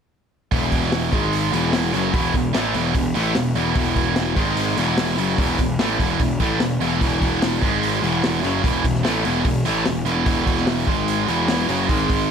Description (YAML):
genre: classic rock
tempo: 148 BPM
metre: 4/4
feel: straight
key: E major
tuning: A4 = 440 Hz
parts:
  - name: sludgy distorted guitar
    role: riff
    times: 0.5-12.3 s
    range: E2 to A3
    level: -24 LUFS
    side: left 11 dB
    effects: overdrive
  - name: tight distorted guitar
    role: riff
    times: 0.5-12.3 s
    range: E2 to A3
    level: -22 LUFS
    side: right 13 dB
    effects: distortion
  - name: fuzz picked electric bass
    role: bass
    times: 0.5-12.3 s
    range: E1 to A1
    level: -25 LUFS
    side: equal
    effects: overdrive
  - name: vintage drum kit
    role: drums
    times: 0.5-12.2 s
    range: hi-hat, kick drum, snare drum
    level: -24 LUFS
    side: equal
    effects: none
room: light reverb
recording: none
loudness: -18 LUFS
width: side -7 dB against mid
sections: 0.5-12.3 A section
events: none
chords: 0.5 E5; 1.1 G#5; 1.5 E5; 4.4 G#5; 4.8 E5; 7.6 G#5; 8.0 E5; 10.9 G#5; 11.3 E5